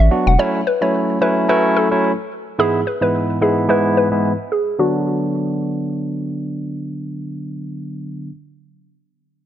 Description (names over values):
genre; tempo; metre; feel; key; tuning
afrobeats; 109 BPM; 4/4; swing 55% on 16ths; B dorian; A4 = 440 Hz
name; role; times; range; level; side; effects
hollow square pluck; melody; 0.0-6.4 s; F#4 to F#5; -20 LUFS; equal; chorus, low-pass filter, tape echo
barky tine electric piano; accompaniment; 0.1-8.3 s; G#2 to F#4; -18 LUFS; equal; low-pass filter
room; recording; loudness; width
light reverb; none; -16 LUFS; side -11 dB against mid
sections
0.4-4.8 A section; 4.8-7.0 B section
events
filter sweep 0.4-4.8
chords
0.4 F#m7; 2.6 E/G#; 4.8 Bm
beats
| 0.38 0.93 1.48 2.04 | 2.58 3.14 3.69 4.24 | 4.79 5.34 5.89 6.44